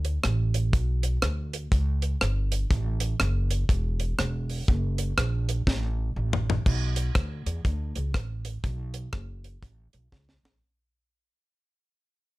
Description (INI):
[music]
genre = ska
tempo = 122 BPM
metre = 4/4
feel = swing 62% on 8ths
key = B minor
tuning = A4 = 442 Hz
[part]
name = upright bass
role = bass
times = 0.0-10.6 s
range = E1 to E2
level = -27 LUFS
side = equal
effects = none
[part]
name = deep reggae drum kit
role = drums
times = 0.0-10.6 s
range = crash cymbal, hi-hat, kick drum, rim click, snare drum, toms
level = -26 LUFS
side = equal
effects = none
[sound]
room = little or no reverb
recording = none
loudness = -25 LUFS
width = side -19 dB against mid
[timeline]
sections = 0.0-6.7 A section; 6.7-10.6 B section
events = drum fill 5.7-6.7, 10.1-10.6; fade-out 6.7-10.6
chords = none